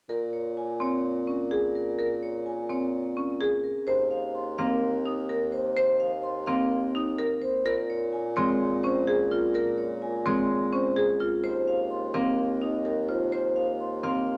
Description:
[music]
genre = classical, minimalist pattern music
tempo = 127 BPM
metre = 4/4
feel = straight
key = Bb minor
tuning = A4 = 440 Hz
[part]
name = vibraphone with medium hard mallets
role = melody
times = 0.1-14.3 s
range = Bb4 to C6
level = -33 LUFS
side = equal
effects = none
[part]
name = marimba with medium hard mallets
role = arpeggios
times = 0.1-14.3 s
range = C4 to C5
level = -30 LUFS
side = equal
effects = none
[part]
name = warm bassoon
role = bass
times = 0.1-14.4 s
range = Eb2 to Bb2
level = -34 LUFS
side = equal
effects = none
[part]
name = concert harp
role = accompaniment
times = 4.6-14.4 s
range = Ab3 to Bb3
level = -36 LUFS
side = equal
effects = none
[sound]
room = moderate large studio reverb, RT60 1.4 s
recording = none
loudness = -27 LUFS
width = mono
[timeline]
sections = 0.1-14.4 A section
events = none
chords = 0.1 Bbm7; 3.9 Ebsus2; 7.7 Bbm7; 11.4 Ebsus2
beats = | 0.10 0.57 1.04 1.51 | 1.99 2.46 2.93 3.40 | 3.88 4.35 4.82 5.29 | 5.77 6.24 6.71 7.18 | 7.66 8.13 8.60 9.07 | 9.55 10.02 10.49 10.96 | 11.44 11.91 12.38 12.85 | 13.32 13.80 14.27

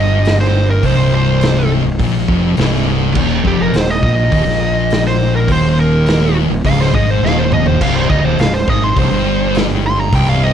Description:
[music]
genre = stoner and doom metal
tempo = 103 BPM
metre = 4/4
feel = straight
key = C phrygian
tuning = A4 = 440 Hz
[part]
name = fuzz lead guitar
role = melody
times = 0.0-10.5 s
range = G4 to C6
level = -18 LUFS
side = right 2 dB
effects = distortion, ping-pong delay
[part]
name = thick fuzz guitar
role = riff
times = 0.0-10.5 s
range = C2 to Bb2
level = -16 LUFS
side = left 7 dB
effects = distortion
[part]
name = thick fuzz guitar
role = riff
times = 0.0-10.5 s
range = C2 to Bb2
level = -19 LUFS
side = right 11 dB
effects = distortion
[part]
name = fuzz fingered electric bass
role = bass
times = 0.0-10.5 s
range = C1 to Bb1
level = -19 LUFS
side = right 1 dB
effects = overdrive
[part]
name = raw garage drum kit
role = drums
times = 0.2-10.3 s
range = crash cymbal, hi-hat, kick drum, snare drum, splash cymbal, toms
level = -19 LUFS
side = right 1 dB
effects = none
[sound]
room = light reverb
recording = dark, warm production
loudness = -11 LUFS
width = side -9 dB against mid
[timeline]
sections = 0.0-10.5 A section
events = lead electric guitar solo 0.0-10.5; drum fill 7.2-7.8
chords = 0.0 C5; 3.2 Eb5; 7.8 Cm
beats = 0.25 | 0.83 1.42 2.00 2.58 | 3.16 3.74 4.32 4.90 | 5.48 6.06 6.64 7.23 | 7.81 8.39 8.97 9.55 | 10.13

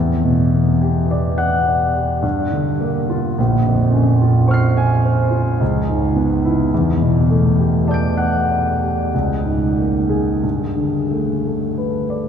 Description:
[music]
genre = classical, impressionist solo piano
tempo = 44-54 BPM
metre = 3/4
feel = rubato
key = unclear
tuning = A4 = 440 Hz
[part]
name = clear concert grand piano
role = solo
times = 0.0-12.3 s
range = Bb1 to D7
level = -15 LUFS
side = equal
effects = none
[sound]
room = wet cathedral reverb, RT60 6.4 s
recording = none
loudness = -15 LUFS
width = side -8 dB against mid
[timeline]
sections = 0.0-12.3 A section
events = none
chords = 0.0 Em9; 2.2 Gm7; 3.4 Bbm9; 5.6 C#m7; 6.7 Em11; 9.1 C#5; 10.4 Gadd9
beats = 1.10 2.24 | 3.38 4.50 5.61 | 6.72 7.87 9.13 | 10.43 11.77

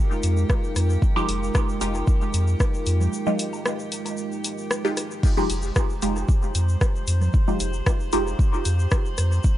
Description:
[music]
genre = dub techno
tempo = 114 BPM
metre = 4/4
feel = straight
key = F minor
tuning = A4 = 440 Hz
[part]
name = dark analog pad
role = sustained chords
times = 0.0-9.6 s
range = Ab3 to Bb4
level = -32 LUFS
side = right 2 dB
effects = chorus, sidechain pumping
[part]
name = filtered dub chord stab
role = stabs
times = 0.0-8.4 s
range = Ab3 to G4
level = -28 LUFS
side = equal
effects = phaser, sidechain pumping, dub echo
[part]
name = metallic inharmonic drone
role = texture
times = 0.0-9.6 s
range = G4 to C5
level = -38 LUFS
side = left 1 dB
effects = chorus, built-in reverb, sidechain pumping
[part]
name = egg shaker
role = percussion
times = 0.1-9.6 s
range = none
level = -38 LUFS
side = left 3 dB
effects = none
[part]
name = pure sine sub bass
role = bass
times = 0.2-9.4 s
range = F1 to F2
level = -22 LUFS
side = equal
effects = sidechain pumping
[part]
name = deep house drum kit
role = drums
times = 0.2-9.3 s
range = crash cymbal, hi-hat, rim click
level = -29 LUFS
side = left 1 dB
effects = overdrive
[part]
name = electronic kick drum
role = drums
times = 0.5-9.6 s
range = none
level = -21 LUFS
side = equal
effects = overdrive
[part]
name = congas and woodblock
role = percussion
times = 1.2-7.6 s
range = none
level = -35 LUFS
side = right 4 dB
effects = sidechain pumping on perc, dub echo
[sound]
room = little or no reverb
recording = nothing above 10.7 kHz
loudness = -20 LUFS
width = side -13 dB against mid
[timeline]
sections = 0.0-9.6 A section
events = break 3.1-5.2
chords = 0.0 Fm9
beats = 0.50 | 1.02 1.55 2.08 2.60 | 3.13 3.65 4.18 4.71 | 5.23 5.76 6.29 6.81 | 7.34 7.87 8.39 8.92 | 9.45

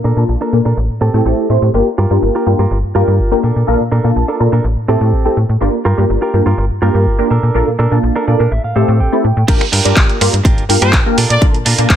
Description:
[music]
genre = filtered disco house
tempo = 124 BPM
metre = 4/4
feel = straight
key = G dorian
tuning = A4 = 441 Hz
[part]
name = direct-recorded clean electric guitar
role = riff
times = 0.0-12.0 s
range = C4 to G5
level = -20 LUFS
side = right 4 dB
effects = sidechain pumping, low-pass filter
[part]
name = slap-like FM bass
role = bass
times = 0.0-12.0 s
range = G1 to Bb2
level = -14 LUFS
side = equal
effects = tube saturation, sidechain pumping, low-pass filter
[part]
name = funky polysynth comp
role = accompaniment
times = 0.2-12.0 s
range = A3 to A5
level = -16 LUFS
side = left 1 dB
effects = chorus, phaser, sidechain pumping, low-pass filter
[part]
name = electronic kick drum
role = drums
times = 9.5-12.0 s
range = none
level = -12 LUFS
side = equal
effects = studio reverb
[part]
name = punchy analog drum machine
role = drums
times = 9.5-12.0 s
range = crash cymbal, finger snaps, handclaps, hi-hat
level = -16 LUFS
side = right 2 dB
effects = sidechain pumping on hats, studio reverb, sidechain pumping on cymbals
[part]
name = clear trumpet section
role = melody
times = 10.8-12.0 s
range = C5 to D5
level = -18 LUFS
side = left 1 dB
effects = sidechain pumping, low-pass filter, digital delay
[sound]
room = little or no reverb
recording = none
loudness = -11 LUFS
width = side -10 dB against mid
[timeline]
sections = 0.0-9.5 A section; 9.5-12.0 B section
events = filter sweep 0.0-9.5; clean electric guitar fill 8.0-9.5; drop 9.5-12.0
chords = 0.0 Bbmaj7; 0.8 Am7; 1.7 Gm7; 3.4 Bbmaj7; 4.6 Am7; 5.6 Gm7; 7.3 Bbmaj7; 8.5 Am7; 9.5 Gm7; 11.2 Bbmaj7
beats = 0.29 0.77 1.26 | 1.74 2.23 2.71 3.19 | 3.68 4.16 4.64 5.13 | 5.61 6.10 6.58 7.06 | 7.55 8.03 8.52 9.00 | 9.48 9.97 10.45 10.94 | 11.42 11.90

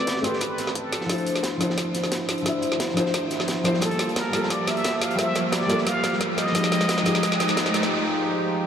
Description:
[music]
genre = liquid drum and bass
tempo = 176 BPM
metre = 4/4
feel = straight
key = unclear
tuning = A4 = 440 Hz
[part]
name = trumpet with plunger mute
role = melody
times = 0.0-1.4, 3.8-7.9 s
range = A4 to F5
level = -28 LUFS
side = equal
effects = diffuse ambient delay
[part]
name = felt-muted upright piano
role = accompaniment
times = 0.0-8.7 s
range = F3 to E5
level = -27 LUFS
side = left 1 dB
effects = low-pass filter, diffuse ambient delay
[part]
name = warm analog pad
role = sustained chords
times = 0.0-8.7 s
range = F3 to A5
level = -28 LUFS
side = right 1 dB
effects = chorus
[part]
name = saturated sub bass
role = bass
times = 0.0-7.9 s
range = F1 to F2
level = -44 LUFS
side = equal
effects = none
[part]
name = riser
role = sound effects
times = 2.6-7.9 s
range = none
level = -32 LUFS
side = left 1 dB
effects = none
[part]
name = crunchy breakbeat drum kit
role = drums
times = 0.1-7.9 s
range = hi-hat, snare drum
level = -33 LUFS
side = equal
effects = high-pass filter on hats, high-pass filter on snare, high-pass filter on room
[part]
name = drum and bass drum kit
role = drums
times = 0.1-7.9 s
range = hi-hat, snare drum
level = -27 LUFS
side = equal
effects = high-pass filter on hats, high-pass filter on snare, high-pass filter on room
[part]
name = electronic kick drum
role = drums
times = 0.1-7.6 s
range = none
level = -38 LUFS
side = equal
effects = none
[sound]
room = wet huge ambient reverb, RT60 4.7 s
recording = dreamy mix soaked in reverb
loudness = -21 LUFS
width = side -8 dB against mid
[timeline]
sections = 0.0-8.7 A section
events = build-up 0.0-8.7; drum fill 0.0-7.9; filter sweep on felt piano 0.0-8.7; filter sweep on analog synth pad 0.0-8.7; riser 2.6-7.9; break 7.9-8.7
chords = 0.0 Am9; 0.9 Dm9; 3.8 Gm9; 6.5 Fm9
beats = 0.07 0.41 0.75 | 1.09 1.44 1.78 2.12 | 2.46 2.80 3.14 3.48 | 3.82 4.16 4.50 4.84 | 5.19 5.53 5.87 6.21 | 6.55 6.89 7.23 7.57 | 7.91 8.25 8.60

